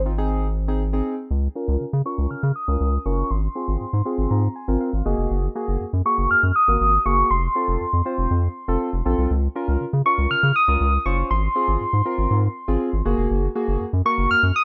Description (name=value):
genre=dance-pop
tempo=120 BPM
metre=4/4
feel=straight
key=Db major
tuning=A4 = 441 Hz
part: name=soft struck synth lead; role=melody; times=0.0-14.6 s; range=C6 to F6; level=-23 LUFS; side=equal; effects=chorus, phaser, low-pass filter, plate reverb
part: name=round analog bass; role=bass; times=0.0-14.5 s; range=F1 to Db3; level=-24 LUFS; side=equal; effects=none
part: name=soft electric-piano-like synth keys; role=accompaniment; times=0.1-14.4 s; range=Bb3 to C6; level=-29 LUFS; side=equal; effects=chorus, low-pass filter, plate reverb
room=light reverb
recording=rough home demo mix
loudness=-21 LUFS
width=mono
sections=0.0-1.3 A section; 1.3-14.6 B section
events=build-up 1.3-14.6; filter sweep 1.3-14.6; synth keys fill 3.8-5.3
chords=0.0 Ab; 1.3 Db6; 3.3 Ab6; 5.1 Gbadd9; 7.3 F; 9.3 Db6; 11.3 Ab6; 13.1 Gbadd9